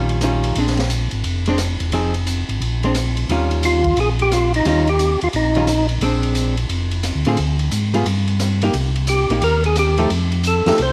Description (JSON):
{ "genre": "soul jazz organ trio", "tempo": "176 BPM", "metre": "4/4", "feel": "swing 64% on 8ths", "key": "Bb mixolydian", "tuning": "A4 = 441 Hz", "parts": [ { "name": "archtop guitar, miked and amplified", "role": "accompaniment", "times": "0.0-10.8 s", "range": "D3 to Ab4", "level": "-24 LUFS", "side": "equal", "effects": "cassette tape" }, { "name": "mellow tonewheel organ", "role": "bass", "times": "0.0-10.9 s", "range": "E1 to A2", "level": "-22 LUFS", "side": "equal", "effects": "chorus vibrato, slow rotary speaker" }, { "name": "open jazz drum kit", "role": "drums", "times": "0.1-10.9 s", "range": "hi-hat, kick drum, ride cymbal, rim click, snare drum", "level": "-28 LUFS", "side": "equal", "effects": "none" }, { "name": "percussive tonewheel organ", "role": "melody", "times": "3.7-5.9, 9.1-10.9 s", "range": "Eb4 to C5", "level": "-20 LUFS", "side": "equal", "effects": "slow rotary speaker, overdrive, cassette tape" } ], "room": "light reverb, small room ambience", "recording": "home recording on cassette", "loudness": "-18 LUFS", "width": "mono", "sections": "0.0-10.9 A section", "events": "none", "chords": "0.0 Eb9; 0.6 Bb9; 1.9 Fm7; 2.6 Bb9; 3.3 Eb9; 6.0 Bb9; 7.4 Ddim; 8.1 Gm; 8.7 Cm7; 10.1 F9" }